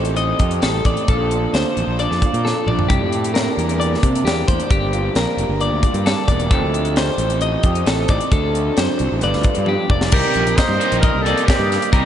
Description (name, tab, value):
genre	math rock and midwest emo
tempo	133 BPM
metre	4/4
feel	straight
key	G minor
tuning	A4 = 441 Hz
part	electric guitar through a small old amp	accompaniment	0.0-12.1 s	G2 to B4	-24 LUFS	right 7 dB	analog chorus
part	twelve-string electric guitar	arpeggios	0.0-12.1 s	G4 to Eb5	-21 LUFS	left 4 dB	spring reverb
part	fuzz fingered electric bass	bass	0.0-12.0 s	E1 to C3	-21 LUFS	equal	overdrive
part	crisp fusion drum kit	drums	0.0-12.0 s	crash cymbal, hi-hat, kick drum, snare drum, toms	-20 LUFS	equal	none
part	clear trumpet	melody	10.1-12.1 s	G4 to C5	-20 LUFS	right 1 dB	ping-pong delay
part	cranked stack guitar	riff	10.1-12.1 s	C3 to Eb4	-25 LUFS	right 1 dB	overdrive
room	moderate huge ambient reverb, RT60 8.4 s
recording	dreamy mix soaked in reverb, nothing above 10.7 kHz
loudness	-15 LUFS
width	side -10 dB against mid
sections	0.0-10.1 A section; 10.1-12.1 B section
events	drum fill 2.4-2.9, 9.7-10.1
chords	0.0 F9; 1.1 Bbmaj7; 2.9 C9; 4.7 Gm9; 6.5 F9; 8.3 D7; 9.2 G7; 10.1 Cm7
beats	0.18 0.64 | 1.09 1.54 1.99 2.45 | 2.90 3.35 3.81 4.26 | 4.71 5.16 5.61 6.07 | 6.52 6.97 7.42 7.87 | 8.32 8.77 9.22 9.68 | 10.12 10.57 11.02 11.47 | 11.92